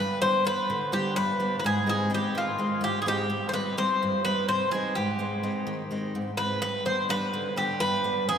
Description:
greek folk, Greek bouzouki band; 253 BPM (eighths); 7/8; straight; G phrygian dominant; A4 = 439 Hz
Greek bouzouki; melody; 0.0-8.4 s; F4 to C5; -26 LUFS; equal
picked steel-string acoustic guitar; accompaniment; 0.0-8.4 s; F2 to Eb4; -29 LUFS; equal
wet cathedral reverb, RT60 6.2 s; recorded in a church or concert hall; -24 LUFS; side -8 dB against mid
0.0-8.4 A section
0.0 G; 1.6 Ab; 3.3 Cm; 5.0 Ab; 6.6 G
0.22 0.46 0.70 0.93 1.17 1.41 | 1.65 1.88 2.12 2.36 2.59 2.83 3.07 | 3.31 3.54 3.78 4.02 4.25 4.49 4.73 | 4.96 5.20 5.44 5.67 5.91 6.15 6.38 | 6.62 6.86 7.10 7.33 7.57 7.81 8.04 | 8.28

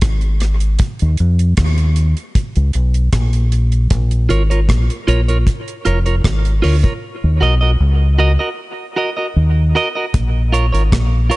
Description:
dub reggae; 77 BPM; 4/4; straight; Eb minor; A4 = 439 Hz
deep dub fingered electric bass; bass; 0.0-11.3 s; F1 to F2; -13 LUFS; equal
deep reggae drum kit; drums; 0.0-11.4 s; hi-hat, kick drum, rim click; -18 LUFS; equal
clean electric guitar; accompaniment; 4.3-11.4 s; F4 to Eb5; -20 LUFS; right 2 dB; dub echo
studio ambience; echo-heavy mix, nothing above 10.6 kHz; -13 LUFS; side -20 dB against mid
0.0-7.0 A section; 7.0-11.4 B section
break 0.0-3.9; part muted 7.0-10.1
0.0 N.C.; 0.8 Eb5; 3.9 Bbm; 7.0 Ebm; 10.1 Bbm
0.03 | 0.80 1.58 2.36 3.13 | 3.91 4.69 5.47 6.25 | 7.03 7.81 8.59 9.37 | 10.14 10.93

